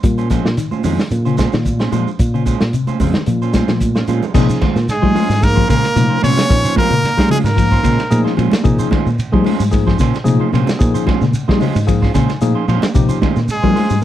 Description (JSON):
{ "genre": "afrobeat", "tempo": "112 BPM", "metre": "4/4", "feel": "swing 54% on 16ths", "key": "Bb dorian", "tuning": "A4 = 441 Hz", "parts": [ { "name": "mellow electric guitar", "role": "arpeggios", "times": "0.0-14.0 s", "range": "C3 to Ab3", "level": "-19 LUFS", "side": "left 6 dB", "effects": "none" }, { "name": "fingered electric bass", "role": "bass", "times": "0.0-14.0 s", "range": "F2 to G3", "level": "-17 LUFS", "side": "equal", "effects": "none" }, { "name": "vintage drum kit", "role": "drums", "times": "0.0-13.9 s", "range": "crash cymbal, hi-hat, kick drum, ride cymbal, snare drum", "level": "-18 LUFS", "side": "equal", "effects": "none" }, { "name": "congas", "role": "percussion", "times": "0.0-13.9 s", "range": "none", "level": "-23 LUFS", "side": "right 4 dB", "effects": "none" }, { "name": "shekere", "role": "percussion", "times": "0.0-14.0 s", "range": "none", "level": "-26 LUFS", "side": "right 2 dB", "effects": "none" }, { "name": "electric guitar at the edge of break-up", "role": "stabs", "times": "0.2-13.9 s", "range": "Ab3 to C5", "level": "-23 LUFS", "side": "right 12 dB", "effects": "spring reverb" }, { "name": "bright tine electric piano", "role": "accompaniment", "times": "4.3-14.0 s", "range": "F3 to Ab5", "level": "-21 LUFS", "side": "left 5 dB", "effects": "medium stereo tremolo" }, { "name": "brilliant trumpet", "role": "melody", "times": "4.9-8.2, 13.5-14.0 s", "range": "Ab4 to Db5", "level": "-18 LUFS", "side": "equal", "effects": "none" }, { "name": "trombone with bucket mute", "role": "second line", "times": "4.9-8.2, 13.5-14.0 s", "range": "Ab3 to Db4", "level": "-24 LUFS", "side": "right 6 dB", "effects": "none" } ], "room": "light reverb", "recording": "dry, close 1970s-style studio recording", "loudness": "-12 LUFS", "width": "side -12 dB against mid", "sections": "0.0-4.3 A section; 4.3-14.0 B section", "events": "drum fill 3.5-4.3; tine electric piano fill 11.3-12.9", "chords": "0.0 Bbm9", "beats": "| 0.04 0.57 1.11 1.65 | 2.19 2.73 3.27 3.81 | 4.35 4.88 5.42 5.96 | 6.50 7.03 7.57 8.11 | 8.64 9.18 9.72 10.26 | 10.80 11.33 11.87 12.41 | 12.95 13.49 14.03" }